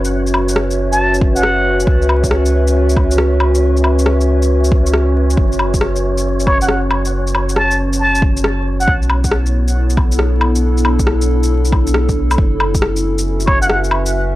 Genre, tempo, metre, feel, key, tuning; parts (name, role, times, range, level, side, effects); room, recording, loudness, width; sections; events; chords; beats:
future garage; 137 BPM; 4/4; swing 67% on 16ths; F# minor; A4 = 438 Hz
warbly tape-like pad; sustained chords; 0.0-14.4 s; B3 to E5; -18 LUFS; equal; chorus, built-in reverb, sidechain pumping
warm sub bass; bass; 0.0-14.4 s; F#1 to C#2; -16 LUFS; equal; sidechain pumping
electronic shaker, woodblock and rim click; drums; 0.0-14.1 s; -19 LUFS; left 1 dB; overdrive, studio ambience
wind-like tuned noise texture; texture; 0.0-12.4 s; C#5; -27 LUFS; right 1 dB; built-in reverb
trumpet with plunger mute; melody; 0.9-1.8, 6.5-8.9, 13.5-13.8 s; C#5 to A5; -18 LUFS; equal; tape echo
electronic kick drum; drums; 1.2-13.6 s; -15 LUFS; equal; overdrive, studio ambience
light reverb; dry, gritty hardware recording, vinyl crackle; -12 LUFS; side -16 dB against mid
0.0-12.4 A section; 12.4-14.4 B section
0.0 F#7(no3); 1.9 C#m7; 5.4 F#5; 8.9 Bm7; 12.4 F#m7
| 0.12 0.56 0.99 1.43 | 1.87 2.31 2.75 3.18 | 3.62 4.06 4.50 4.94 | 5.37 5.81 6.25 6.69 | 7.13 7.56 8.00 8.44 | 8.88 9.32 9.75 10.19 | 10.63 11.07 11.51 11.94 | 12.38 12.82 13.26 13.70 | 14.13